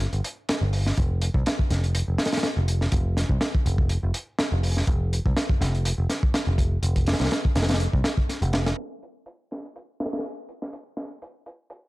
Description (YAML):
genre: breakbeat, breaks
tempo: 123 BPM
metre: 4/4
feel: swing 54% on 16ths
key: unclear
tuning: A4 = 440 Hz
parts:
  - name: picked electric bass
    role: bass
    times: 0.0-8.7 s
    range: F1 to C2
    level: -23 LUFS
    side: equal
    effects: none
  - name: crunchy breakbeat drum kit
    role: drums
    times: 0.0-11.8 s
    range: hi-hat, kick drum, snare drum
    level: -24 LUFS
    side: equal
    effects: high-pass filter on kick, high-pass filter on hats, high-pass filter on snare, high-pass filter on room
room: little or no reverb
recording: dark, warm production, low-pass filter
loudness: -22 LUFS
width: side -19 dB against mid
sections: 0.0-8.8 A section; 8.8-11.9 B section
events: filter sweep 8.8-11.9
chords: none